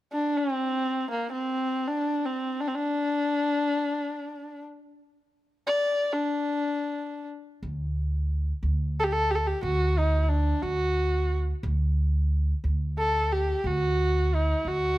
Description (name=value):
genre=persian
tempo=free time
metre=none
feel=none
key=D dastgah homayun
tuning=A4 = 439 Hz
part: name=warm kamancheh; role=melody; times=0.1-15.0 s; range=Bb3 to D5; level=-26 LUFS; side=left 1 dB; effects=none
part: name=upright bass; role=bass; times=7.6-15.0 s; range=D2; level=-25 LUFS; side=equal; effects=none
room=light reverb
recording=close, detailed microphones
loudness=-24 LUFS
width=side -16 dB against mid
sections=0.0-7.6 A section; 7.6-15.0 B section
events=none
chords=none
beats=free time